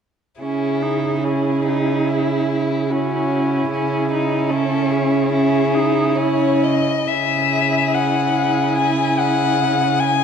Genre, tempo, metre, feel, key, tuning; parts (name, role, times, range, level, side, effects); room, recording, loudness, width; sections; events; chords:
classical, slow romantic movement for string quartet; 64-75 BPM; 4/4; rubato; C# minor; A4 = 439 Hz
dark violin; melody; 0.4-10.2 s; F#4 to G#5; -21 LUFS; left 8 dB
rich violin; second line; 0.4-10.2 s; C#4 to G#4; -24 LUFS; left 2 dB
warm viola; accompaniment; 0.4-10.2 s; C#4 to E4; -22 LUFS; right 3 dB
rich cello; bass; 0.4-10.2 s; C#3; -22 LUFS; right 5 dB
moderate scoring stage reverb, RT60 1.9 s; dark, warm production; -16 LUFS; side -7 dB against mid
0.4-7.1 A section; 7.1-10.2 B section
0.4 C#m